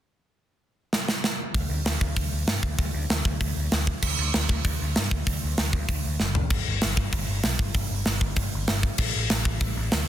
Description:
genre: punk rock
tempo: 194 BPM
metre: 4/4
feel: straight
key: D major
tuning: A4 = 444 Hz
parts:
  - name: tight metal drum kit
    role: drums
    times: 0.9-10.0 s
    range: crash cymbal, hi-hat, kick drum, snare drum, toms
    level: -24 LUFS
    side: equal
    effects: none
  - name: overdriven picked electric bass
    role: bass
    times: 1.5-10.0 s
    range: F#1 to G2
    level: -28 LUFS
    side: equal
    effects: none
room: little or no reverb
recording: dense, heavily limited modern master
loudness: -23 LUFS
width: side -11 dB against mid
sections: 0.3-1.6 A section; 1.6-10.1 B section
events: drum fill 0.9-1.6, 6.2-6.5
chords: none

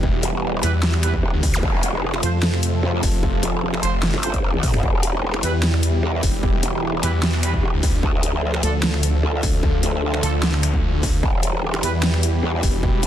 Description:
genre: heavy wobble dubstep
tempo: 150 BPM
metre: 4/4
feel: swing 54% on 16ths, half-time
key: E phrygian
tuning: A4 = 440 Hz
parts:
  - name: supersaw pad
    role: sustained chords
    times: 0.0-13.1 s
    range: B2 to A4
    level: -27 LUFS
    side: equal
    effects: phaser, sidechain pumping, low-pass filter
  - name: snarling distorted saw bass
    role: bass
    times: 0.0-13.0 s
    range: E1 to F2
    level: -21 LUFS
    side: equal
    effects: distortion, overdrive
  - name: electronic kick drum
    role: drums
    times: 0.0-12.9 s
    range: none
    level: -22 LUFS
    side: equal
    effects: distortion, studio ambience
  - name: growl bass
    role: bass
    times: 0.2-13.1 s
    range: E1 to F2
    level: -22 LUFS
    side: equal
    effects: chorus, overdrive
  - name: dubstep drum kit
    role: drums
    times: 0.2-13.1 s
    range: finger snaps, hi-hat, snare drum, toms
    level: -25 LUFS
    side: equal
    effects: studio ambience
  - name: mellow brass ensemble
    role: stabs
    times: 0.6-11.9 s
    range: D4 to C5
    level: -30 LUFS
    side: right 4 dB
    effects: ping-pong delay
  - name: zap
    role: sound effects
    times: 1.5-1.6 s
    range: none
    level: -28 LUFS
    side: equal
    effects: none
room: little or no reverb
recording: dense, heavily limited modern master, lossy compression artefacts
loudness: -18 LUFS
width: side -11 dB against mid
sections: 0.0-13.1 A section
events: drum fill 4.5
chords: 0.0 Em; 1.6 F; 4.8 Em; 8.0 Dm; 11.2 Em

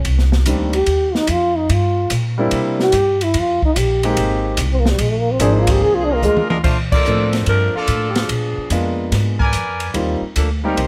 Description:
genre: jazz, big band swing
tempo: 146 BPM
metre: 4/4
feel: swing 67% on 8ths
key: Bb major from 6.7 s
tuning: A4 = 440 Hz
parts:
  - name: trombone with bucket mute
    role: melody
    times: 0.0-6.4 s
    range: G3 to Ab4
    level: -19 LUFS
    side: equal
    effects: none
  - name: upright bass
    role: bass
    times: 0.0-10.9 s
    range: Ab1 to C3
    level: -21 LUFS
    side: equal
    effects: none
  - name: open jazz drum kit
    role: drums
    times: 0.0-10.9 s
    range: crash cymbal, hi-hat, kick drum, ride cymbal, snare drum, toms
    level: -25 LUFS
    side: equal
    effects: none
  - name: warm grand piano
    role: accompaniment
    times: 0.5-10.8 s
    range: Eb3 to Bb4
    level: -23 LUFS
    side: equal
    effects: none
  - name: mellow saxophone section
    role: melody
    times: 6.0-10.9 s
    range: F3 to D5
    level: -24 LUFS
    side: equal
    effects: none
  - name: bright trumpet section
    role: stabs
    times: 7.8-9.9 s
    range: F4 to Ab5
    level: -24 LUFS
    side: equal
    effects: none
room: little or no reverb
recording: close, detailed microphones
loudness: -17 LUFS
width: mono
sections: 0.0-6.7 A section; 6.7-10.9 B section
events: trombone solo 0.0-6.7; drum fill 6.2-6.7; band accent 6.9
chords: 0.1 Cm9; 1.7 C7; 3.4 Fm11; 5.0 Bb7; 6.7 Bbmaj7; 8.3 Bb7b9; 10.0 Eb6

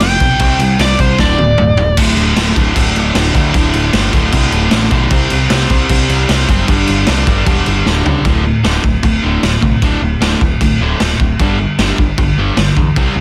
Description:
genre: punk rock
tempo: 153 BPM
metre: 4/4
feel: straight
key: unclear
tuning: A4 = 440 Hz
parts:
  - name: crunchy overdriven guitar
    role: melody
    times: 0.0-2.0 s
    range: C5 to G5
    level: -17 LUFS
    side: equal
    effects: none
  - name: distorted electric guitar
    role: riff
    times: 0.0-13.2 s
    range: D2 to C4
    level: -18 LUFS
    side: equal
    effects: distortion
  - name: growling picked electric bass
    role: bass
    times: 0.0-13.2 s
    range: D1 to E2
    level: -19 LUFS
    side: equal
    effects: overdrive
  - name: raw garage drum kit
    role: drums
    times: 0.0-13.1 s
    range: crash cymbal, kick drum, snare drum, toms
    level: -16 LUFS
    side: equal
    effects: none
room: little or no reverb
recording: dense, heavily limited modern master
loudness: -13 LUFS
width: mono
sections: 0.0-2.0 A section; 2.0-8.2 B section; 8.2-13.2 C section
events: overdriven electric guitar solo 0.0-2.0; drum fill 1.2-2.0, 7.9-8.2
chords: 0.4 C5; 1.2 D5; 5.1 C5; 6.7 G5; 8.2 D5; 11.4 G5

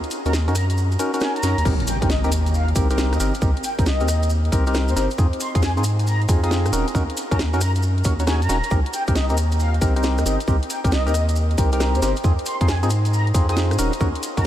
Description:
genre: UK garage, two-step garage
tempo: 136 BPM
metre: 4/4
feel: swing 66% on 16ths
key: C minor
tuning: A4 = 442 Hz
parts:
  - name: garage drum kit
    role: drums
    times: 0.0-14.4 s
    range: crash cymbal, hi-hat, rim click, snare drum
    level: -29 LUFS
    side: equal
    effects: none
  - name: maracas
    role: percussion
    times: 0.0-14.5 s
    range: none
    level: -34 LUFS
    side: right 1 dB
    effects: none
  - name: breathy flute-like synth lead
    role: melody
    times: 0.3-14.4 s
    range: C5 to Eb6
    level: -29 LUFS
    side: left 1 dB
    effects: ensemble chorus, ping-pong delay
  - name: percussive organ stab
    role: stabs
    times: 0.3-14.4 s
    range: C4 to Db5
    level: -25 LUFS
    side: equal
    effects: chorus, ping-pong delay
  - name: saturated sub bass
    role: bass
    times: 0.3-14.5 s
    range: Eb1 to Ab2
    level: -20 LUFS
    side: equal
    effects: none
  - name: electronic kick drum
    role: drums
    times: 1.7-14.4 s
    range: none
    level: -20 LUFS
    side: equal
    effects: none
  - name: impact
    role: sound effects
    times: 1.7-3.4 s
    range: none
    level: -30 LUFS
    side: equal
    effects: none
room: light reverb, digital ambience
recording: none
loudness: -18 LUFS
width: side -12 dB against mid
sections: 0.0-1.7 A section; 1.7-14.5 B section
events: kick drops out 0.8-1.7; drop 1.7-14.5; impact 1.7-3.4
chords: 0.0 Ebm7; 1.7 Cm7; 5.2 Fm7; 6.7 Ebm7; 8.7 Cm7; 12.2 Fm7; 13.8 Ebm7

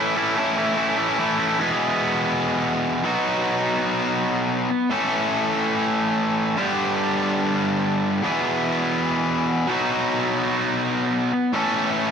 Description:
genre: rock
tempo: free time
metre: none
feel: none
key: unclear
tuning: A4 = 440 Hz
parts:
  - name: distorted electric guitar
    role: solo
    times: 0.0-12.1 s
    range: E2 to A4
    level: -20 LUFS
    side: equal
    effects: overdrive
room: wet large studio reverb, RT60 1.2 s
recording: none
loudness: -20 LUFS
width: side -7 dB against mid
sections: 0.0-1.6 A section; 1.6-12.1 B section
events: none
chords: 0.0 A; 1.6 E; 3.0 B; 4.9 A; 6.6 G; 8.2 E; 9.7 B; 11.5 A

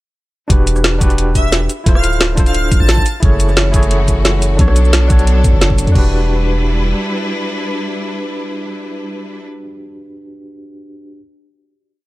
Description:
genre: liquid drum and bass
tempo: 176 BPM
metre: 4/4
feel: straight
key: E dorian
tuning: A4 = 443 Hz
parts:
  - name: overdriven tine electric piano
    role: accompaniment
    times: 0.5-11.2 s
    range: D4 to C#5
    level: -22 LUFS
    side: equal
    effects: fast tremolo, dub echo
  - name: long sustained 808-style bass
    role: bass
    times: 0.5-6.9 s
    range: D1 to E2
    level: -14 LUFS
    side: equal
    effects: none
  - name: drum and bass drum kit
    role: drums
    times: 0.5-5.9 s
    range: hi-hat, rim click, shaker, snare drum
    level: -17 LUFS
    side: equal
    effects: none
  - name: pop drum kit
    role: drums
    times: 0.5-6.0 s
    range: crash cymbal, kick drum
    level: -14 LUFS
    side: equal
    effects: overdrive
  - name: airy dreamy lead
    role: melody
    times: 1.4-3.1 s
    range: E5 to A5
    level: -22 LUFS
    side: equal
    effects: chorus, digital delay
  - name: rich symphonic string section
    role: sustained chords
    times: 3.2-9.4 s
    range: E3 to B4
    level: -22 LUFS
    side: left 1 dB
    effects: sidechain pumping
room: digital ambience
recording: none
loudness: -11 LUFS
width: side -18 dB against mid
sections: 0.5-6.0 drop; 6.0-8.7 final chord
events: drop 0.5-6.0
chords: 0.5 Em7; 1.7 Dm7; 3.1 F#m7; 4.6 Bm7; 6.0 Em7

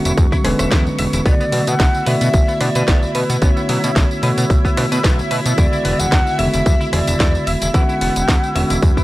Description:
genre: nu-disco, nu disco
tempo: 111 BPM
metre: 4/4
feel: swing 55% on 16ths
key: B dorian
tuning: A4 = 445 Hz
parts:
  - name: bell-like tine electric piano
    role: accompaniment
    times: 0.0-9.0 s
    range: C#3 to D5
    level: -21 LUFS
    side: equal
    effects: sidechain pumping, analog delay
  - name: lush unison pad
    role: sustained chords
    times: 0.0-9.0 s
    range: F#3 to C#6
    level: -26 LUFS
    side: right 1 dB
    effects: chorus, phaser, sidechain pumping
  - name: direct-recorded clean electric guitar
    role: riff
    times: 0.1-9.0 s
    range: F#3 to E5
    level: -27 LUFS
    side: left 2 dB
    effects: ensemble chorus
  - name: fat analog bass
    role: bass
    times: 0.1-8.9 s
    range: E1 to B2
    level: -20 LUFS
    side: equal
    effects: none
  - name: house drum kit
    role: drums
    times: 0.1-9.0 s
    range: hi-hat, rim click, snare drum, tambourine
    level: -24 LUFS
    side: equal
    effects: none
  - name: electronic kick drum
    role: drums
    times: 0.2-9.0 s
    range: none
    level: -15 LUFS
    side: equal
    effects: none
  - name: mellow hollow concert flute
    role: melody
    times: 1.3-8.8 s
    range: B4 to F#5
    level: -23 LUFS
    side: equal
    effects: analog delay
  - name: swell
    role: sound effects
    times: 9.0 s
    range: none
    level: -28 LUFS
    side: right 1 dB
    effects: none
room: little or no reverb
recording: dry, gritty hardware recording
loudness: -14 LUFS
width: side -18 dB against mid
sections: 0.0-9.0 A section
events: swell 9.0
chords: 0.0 E13; 1.3 Bm9; 5.6 E13

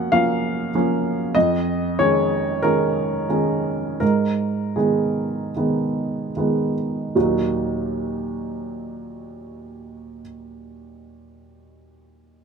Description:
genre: neoclassical minimalist piano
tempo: 73-99 BPM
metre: 4/4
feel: rubato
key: Eb minor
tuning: A4 = 439 Hz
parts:
  - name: warm upright piano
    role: solo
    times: 0.0-12.4 s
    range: Eb2 to Gb5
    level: -20 LUFS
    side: right 1 dB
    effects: none
room: little or no reverb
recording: close, detailed microphones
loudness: -19 LUFS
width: side -6 dB against mid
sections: 0.0-7.1 A section; 7.1-10.2 B section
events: slowing down 0.1-7.1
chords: 0.0 Gbmaj7; 1.3 Dbadd9/F; 4.0 Abm; 7.1 Ebm

